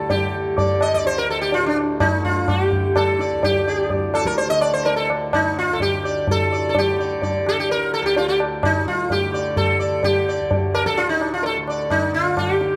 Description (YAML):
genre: indian classical, Hindustani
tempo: 127 BPM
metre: 7/4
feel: straight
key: D raga bhairavi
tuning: A4 = 441 Hz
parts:
  - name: sitar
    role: melody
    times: 0.0-12.8 s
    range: D4 to Eb5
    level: -22 LUFS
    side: equal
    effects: none
  - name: tanpura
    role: drone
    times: 0.0-12.8 s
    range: D2 to D3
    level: -33 LUFS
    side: equal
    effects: none
  - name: tabla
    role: percussion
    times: 0.1-12.8 s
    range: none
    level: -26 LUFS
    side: equal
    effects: none
room: moderate recital hall reverb, RT60 1.7 s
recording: none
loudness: -20 LUFS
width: mono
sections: 0.0-12.8 A section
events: none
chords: none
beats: | 0.10 0.58 1.05 1.53 2.01 2.48 2.96 | 3.43 3.91 4.38 4.86 5.33 5.80 6.28 | 6.75 7.22 7.69 8.16 8.63 9.10 9.57 | 10.04 10.51 10.97 11.44 11.91 12.38